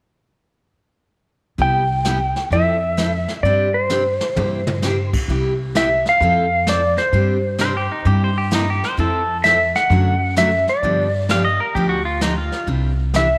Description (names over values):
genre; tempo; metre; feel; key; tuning
country, western swing; 130 BPM; 4/4; swing 67% on 8ths; C major; A4 = 439 Hz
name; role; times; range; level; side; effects
clean lap steel guitar; melody; 1.6-13.4 s; C5 to G5; -20 LUFS; equal; none
picked steel-string acoustic guitar; accompaniment; 1.6-13.3 s; C3 to A4; -26 LUFS; equal; none
upright bass; bass; 1.6-13.4 s; C2 to G2; -24 LUFS; equal; none
jazz brush drum kit; drums; 1.6-13.4 s; brushed snare drum, crash cymbal, hi-hat, kick drum, snare drum, toms; -28 LUFS; equal; none
pedal steel guitar; second line; 7.6-12.7 s; Eb4 to F5; -24 LUFS; equal; none
room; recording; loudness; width
moderate echo chamber reverb, RT60 2.0 s; none; -18 LUFS; mono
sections
1.6-5.3 A section; 5.3-13.4 B section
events
drum fill 3.9-4.8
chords
1.6 Cmaj7; 2.5 Fmaj7; 3.4 Gsus4; 4.4 C7/G; 5.3 Cmaj7; 6.2 Fmaj7; 7.1 Gsus4; 8.1 C7/G; 9.0 Fmaj7; 9.9 D/F#; 10.8 G7; 12.7 Cadd9